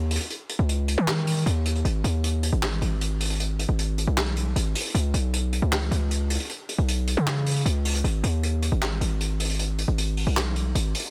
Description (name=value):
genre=hip hop, trap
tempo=155 BPM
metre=4/4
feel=half-time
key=G# minor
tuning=A4 = 445 Hz
part: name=distorted 808-style bass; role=bass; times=0.0-10.9 s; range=G#1 to D#3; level=-26 LUFS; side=equal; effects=distortion
part: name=vintage brush drum kit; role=drums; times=0.1-11.1 s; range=handclaps, hi-hat, snare drum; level=-31 LUFS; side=equal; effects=none
room=little or no reverb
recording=dense, heavily limited modern master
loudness=-25 LUFS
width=mono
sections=0.0-11.1 A section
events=none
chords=none